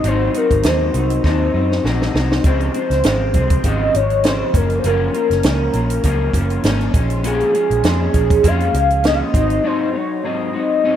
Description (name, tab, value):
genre	indie pop, bedroom pop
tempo	100 BPM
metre	4/4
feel	swing 55% on 16ths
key	unclear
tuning	A4 = 439 Hz
part	warm velvety synth lead	melody	0.0-11.0 s	Ab4 to F5	-19 LUFS	equal	analog chorus, slapback echo
part	electric guitar at the edge of break-up	accompaniment	0.0-11.0 s	Gb2 to Eb4	-20 LUFS	left 2 dB	analog chorus, vibrato effect
part	vintage muted picked electric bass	bass	0.0-9.6 s	Gb1 to Gb2	-19 LUFS	equal	none
part	compact cocktail drum kit	drums	0.0-9.6 s	hi-hat, kick drum, snare drum	-19 LUFS	right 1 dB	none
room	moderate plate reverb, RT60 3.0 s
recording	rough home demo mix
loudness	-14 LUFS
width	side -10 dB against mid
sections	0.0-11.0 A section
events	drum fill 1.2-2.4; break 9.6-11.0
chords	0.0 Ab7; 2.4 Dbmaj7; 4.5 Gbmaj7; 6.9 Bbm7; 9.3 Ab7